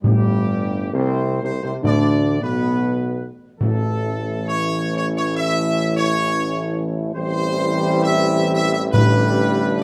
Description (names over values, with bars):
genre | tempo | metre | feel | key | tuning
classical | 101 BPM | 3/4 | straight | unclear | A4 = 440 Hz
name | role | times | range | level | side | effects
warm trumpet section | melody | 0.0-9.8 s | G4 to E5 | -26 LUFS | equal | none
dark French horn section | sustained chords | 0.0-9.8 s | G3 to G4 | -27 LUFS | equal | none
mellow trombone section | sustained chords | 0.0-9.8 s | G2 to A3 | -27 LUFS | equal | none
clear tuba | bass | 0.0-9.8 s | G1 to D2 | -26 LUFS | equal | none
timpani | percussion | 0.0-4.5, 8.9-9.8 s | A2 | -23 LUFS | equal | none
room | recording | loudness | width
light reverb | close, detailed microphones | -20 LUFS | mono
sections
0.0-9.8 A section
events
none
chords
0.0 C5/G; 1.8 Bm; 3.6 A; 7.2 C/A; 8.9 G/A